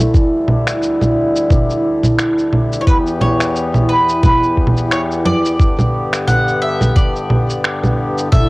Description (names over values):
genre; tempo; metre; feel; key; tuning
folktronica; 88 BPM; 4/4; swing 56% on 16ths; G major; A4 = 440 Hz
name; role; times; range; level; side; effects
hand-pumped harmonium; sustained chords; 0.0-8.5 s; D2 to A4; -20 LUFS; left 2 dB; cassette tape
cimbalom; arpeggios; 0.0-8.5 s; E3 to G4; -19 LUFS; right 1 dB; cassette tape, analog delay
electronic shaker, congas and finger snaps; drums; 0.0-8.5 s; none; -16 LUFS; right 1 dB; cassette tape
electronic kick drum; drums; 0.1-8.5 s; none; -12 LUFS; equal; cassette tape
bowl-back mandolin; melody; 2.8-8.5 s; B4 to F#5; -19 LUFS; equal; cassette tape
room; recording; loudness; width
light reverb, small room ambience; home recording on cassette; -12 LUFS; side -22 dB against mid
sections
0.0-8.5 A section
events
none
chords
0.0 Dsus2; 2.9 Em; 5.6 G